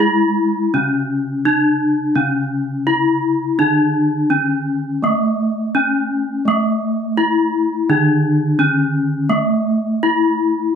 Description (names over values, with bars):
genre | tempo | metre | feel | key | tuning
gamelan | 84 BPM | 4/4 | straight | C# pelog | A4 = 440 Hz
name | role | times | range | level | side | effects
gamelan-type bronze metallophone | melody | 0.0-10.7 s | A3 to E4 | -16 LUFS | left 1 dB | none
gamelan-type bronze metallophone | accompaniment | 0.0-10.8 s | C#3 to A3 | -22 LUFS | right 1 dB | none
room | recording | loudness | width
moderate studio reverb, RT60 0.7 s | band playing live in one room | -15 LUFS | side -7 dB against mid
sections
0.0-10.8 A section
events
none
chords
none